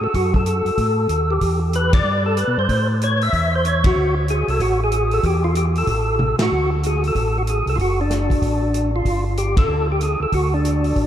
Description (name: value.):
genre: soul jazz organ trio.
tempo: 189 BPM.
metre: 4/4.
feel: swing 62% on 8ths.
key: D mixolydian.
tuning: A4 = 440 Hz.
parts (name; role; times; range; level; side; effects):
percussive tonewheel organ; melody; 0.0-11.1 s; D4 to E5; -20 LUFS; equal; slow rotary speaker, overdrive, chorus vibrato.
mellow tonewheel organ; bass; 0.0-11.1 s; F#1 to B2; -21 LUFS; equal; chorus vibrato, slow rotary speaker.
warm soul drum kit; drums; 0.1-11.1 s; hi-hat, kick drum, ride cymbal, snare drum, toms; -23 LUFS; equal; none.
room: moderate cathedral reverb, RT60 5.5 s.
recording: in a vast, echoing space.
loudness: -17 LUFS.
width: side -10 dB against mid.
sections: 0.0-6.5 A section; 6.5-11.1 A section.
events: band accent 1.9, 3.8, 6.3, 9.5; drum fill 6.2-6.5.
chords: 0.0 D (rootless); 1.4 Em7; 2.7 A5; 4.0 D5; 5.2 Emadd11; 5.9 F#m/A; 6.5 D; 9.1 G5; 10.3 D5.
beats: | 0.15 0.47 0.78 1.10 | 1.42 1.74 2.05 2.37 | 2.69 3.01 3.33 3.64 | 3.96 4.28 4.60 4.92 | 5.23 5.55 5.87 6.19 | 6.50 6.82 7.14 7.46 | 7.78 8.10 8.42 8.73 | 9.05 9.37 9.69 10.01 | 10.33 10.65 10.96.